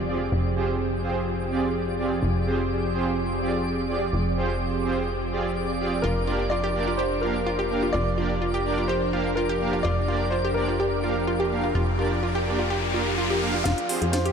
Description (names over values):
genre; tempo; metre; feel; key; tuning
progressive house; 126 BPM; 4/4; straight; F dorian; A4 = 441 Hz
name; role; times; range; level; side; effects
airy breathy pad; sustained chords; 0.0-14.3 s; F3 to Bb4; -30 LUFS; equal; chorus
plucky analog bass; bass; 0.0-14.3 s; F1 to F2; -29 LUFS; left 1 dB; tube saturation
impact and riser; sound effects; 0.0-0.3, 10.9-14.3 s; none; -34 LUFS; left 1 dB; none
twinkling granular texture; texture; 0.0-14.3 s; D5 to F6; -36 LUFS; left 1 dB; built-in reverb, wide subtle chorus
soft supersaw; stabs; 0.1-14.0 s; Bb3 to F5; -28 LUFS; right 2 dB; low-pass filter, tape echo
clear concert grand piano; melody; 6.0-14.3 s; Bb4 to F5; -30 LUFS; left 1 dB; low-pass filter, tape echo
wide unison pluck; arpeggios; 6.0-14.3 s; F4 to G4; -29 LUFS; right 1 dB; tape echo
house drum kit; drums; 13.7-14.3 s; hi-hat, snare drum; -31 LUFS; left 1 dB; overdrive
room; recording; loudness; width
wet huge ambient reverb, RT60 4.2 s; dreamy mix soaked in reverb; -22 LUFS; side -6 dB against mid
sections
0.0-13.7 A section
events
impact 0.0-0.3; riser 10.9-13.7, 13.7-14.3; drum fill 13.7-14.3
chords
0.0 Fmadd9; 6.0 Gm/F; 13.7 Fmadd9